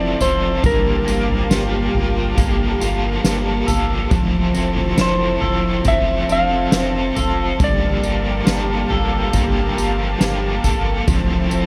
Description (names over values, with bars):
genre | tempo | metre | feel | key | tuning
dream pop | 69 BPM | 4/4 | straight | unclear | A4 = 444 Hz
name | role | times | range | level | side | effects
clean lap steel guitar | melody | 0.0-10.6 s | Bb4 to F5 | -24 LUFS | equal | tape echo, shimmer reverb
biting overdriven guitar | accompaniment | 0.0-11.7 s | F2 to A4 | -27 LUFS | equal | tremolo, lush chorus, shimmer reverb
warm analog pad | sustained chords | 0.0-11.7 s | F3 to A5 | -27 LUFS | equal | chorus, shimmer reverb
electric guitar at the edge of break-up | arpeggios | 0.0-11.7 s | G2 to A4 | -26 LUFS | equal | lush chorus, tape echo, shimmer reverb
warm sub bass | bass | 0.0-11.7 s | F1 to G1 | -26 LUFS | equal | none
soft-mallet drum kit | drums | 0.2-11.7 s | kick drum, snare drum, tambourine, toms | -23 LUFS | equal | none
room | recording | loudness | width
light reverb, small room ambience | none | -18 LUFS | mono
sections
0.0-11.7 A section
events
none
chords
0.0 Fmaj7; 0.6 Gm9; 4.1 Fmaj7; 7.6 Gm9; 11.1 Fmaj7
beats
| 0.64 1.51 2.38 3.25 | 4.12 4.99 5.86 6.73 | 7.60 8.47 9.34 10.21 | 11.08